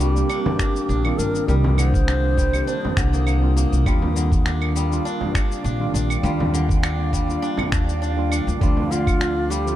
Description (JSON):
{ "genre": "organic downtempo", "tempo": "101 BPM", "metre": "4/4", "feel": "swing 54% on 16ths", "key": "unclear", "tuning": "A4 = 440 Hz", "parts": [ { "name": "bass bansuri", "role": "melody", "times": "0.0-3.5, 8.6-9.8 s", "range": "D4 to C5", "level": "-26 LUFS", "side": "equal", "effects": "digital delay" }, { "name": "tine electric piano", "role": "accompaniment", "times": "0.0-9.8 s", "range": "D3 to G4", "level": "-28 LUFS", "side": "right 2 dB", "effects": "medium stereo tremolo, sidechain pumping, digital delay" }, { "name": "granular cloud pad", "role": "sustained chords", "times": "0.0-9.8 s", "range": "C4 to Eb6", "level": "-31 LUFS", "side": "right 3 dB", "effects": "built-in reverb, sidechain pumping" }, { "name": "steel-string zither", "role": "arpeggios", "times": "0.0-9.8 s", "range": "D3 to D4", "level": "-27 LUFS", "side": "left 3 dB", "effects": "digital delay" }, { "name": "upright bass", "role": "bass", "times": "0.0-9.7 s", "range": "G1 to Eb2", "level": "-21 LUFS", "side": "equal", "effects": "sidechain pumping" }, { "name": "electronic cabasa, claves and finger snaps", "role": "drums", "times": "0.0-9.8 s", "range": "none", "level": "-30 LUFS", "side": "equal", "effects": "none" }, { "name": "frame drum", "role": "percussion", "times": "0.5-8.9 s", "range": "none", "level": "-28 LUFS", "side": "right 2 dB", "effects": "none" }, { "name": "electronic kick drum", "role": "drums", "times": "0.6-9.2 s", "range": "none", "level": "-21 LUFS", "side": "equal", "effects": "none" } ], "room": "little or no reverb", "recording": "dark, warm production", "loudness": "-18 LUFS", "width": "side -13 dB against mid", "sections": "0.0-9.8 A section", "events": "none", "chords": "0.0 Cm7; 3.9 Ebmaj9; 8.6 Dm7" }